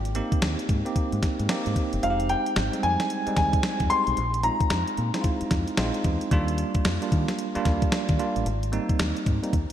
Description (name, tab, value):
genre	R&B, new jack swing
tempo	112 BPM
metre	4/4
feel	swing 62% on 16ths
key	unclear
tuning	A4 = 439 Hz
part	deep dub fingered electric bass	bass	0.0-9.7 s	F1 to Eb3	-28 LUFS	equal	none
part	clean 12-bit digital drum machine	drums	0.1-9.7 s	hi-hat, kick drum, snare drum	-26 LUFS	equal	gated reverb
part	bell-like tine electric piano	accompaniment	0.2-9.6 s	G3 to G4	-28 LUFS	right 2 dB	fast stereo tremolo
part	warm concert grand piano	melody	2.0-5.2 s	F5 to C6	-26 LUFS	left 1 dB	none
room	moderate plate reverb, RT60 3.3 s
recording	bright 1980s-style digital production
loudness	-22 LUFS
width	side -10 dB against mid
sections	0.0-9.7 A section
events	kick muted 2.0-3.1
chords	0.0 Abmaj7; 2.0 Fm9; 4.2 Bb7sus4; 6.3 Ebmaj9; 8.5 Abmaj7